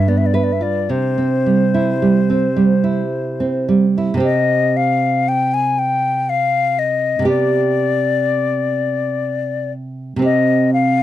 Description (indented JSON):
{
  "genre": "romantic duo for flute and classical guitar",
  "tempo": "52-61 BPM",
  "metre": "3/4",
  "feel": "rubato",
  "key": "C major, C minor from 4.2 s",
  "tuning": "A4 = 440 Hz",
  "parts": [
    { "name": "mellow silver concert flute", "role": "melody", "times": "0.0-11.0 s", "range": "C5 to Ab5", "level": "-18 LUFS", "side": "left 5 dB", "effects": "none" },
    { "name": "nylon-string guitar", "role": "accompaniment", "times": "0.0-11.0 s", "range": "G2 to B4", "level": "-16 LUFS", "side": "right 3 dB", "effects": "none" }
  ],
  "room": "little or no reverb",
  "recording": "dry, close 1970s-style studio recording",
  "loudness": "-14 LUFS",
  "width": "side -12 dB against mid",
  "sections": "0.0-4.2 A section; 4.2-11.0 B section",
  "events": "none",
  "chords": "0.0 G7; 0.9 C; 4.2 C5"
}